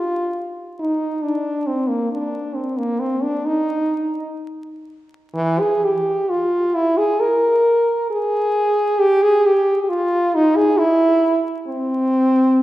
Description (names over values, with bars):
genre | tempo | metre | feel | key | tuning
classical, free, expressive piece for unaccompanied French horn | 54-70 BPM | 4/4 | rubato | unclear | A4 = 441 Hz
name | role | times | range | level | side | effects
clear French horn | solo | 0.0-12.6 s | E3 to Bb4 | -16 LUFS | equal | none
room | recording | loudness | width
wet recital hall reverb, RT60 1.9 s | heard from further back in the room, vinyl crackle | -16 LUFS | side -15 dB against mid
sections
0.0-12.6 A section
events
none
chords
none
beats
0.80 | 1.67 2.56 3.48 4.39 | 5.37 6.31 7.22 8.12 | 9.03 9.91 10.80 11.68